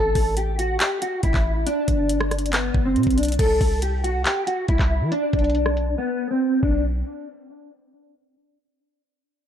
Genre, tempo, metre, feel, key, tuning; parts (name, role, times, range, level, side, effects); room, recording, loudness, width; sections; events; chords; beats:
hip hop, trap; 139 BPM; 4/4; half-time; A4 = 439 Hz
mellow electric guitar; melody; 0.0-6.8 s; B3 to A4; -23 LUFS; equal; ensemble chorus, low-pass filter, tape echo
warm 808-style bass; bass; 0.0-7.0 s; G1 to E3; -24 LUFS; equal
trap drum kit; drums; 0.2-6.7 s; crash cymbal, handclaps, hi-hat, kick drum, rim click; -23 LUFS; equal
digital ambience; low-pass filter; -19 LUFS; side -9 dB against mid
0.0-3.4 A section; 3.4-6.8 B section; 6.8-8.6 C section
filter sweep 3.4-6.8; drums muted 6.0-6.8
0.0 A5; 1.7 G; 3.4 Am13; 5.1 Bm; 6.8 N.C.
0.37 0.80 1.23 | 1.67 2.10 2.53 2.96 | 3.39 3.82 4.25 4.69 | 5.12 5.55 5.98 6.41 | 6.84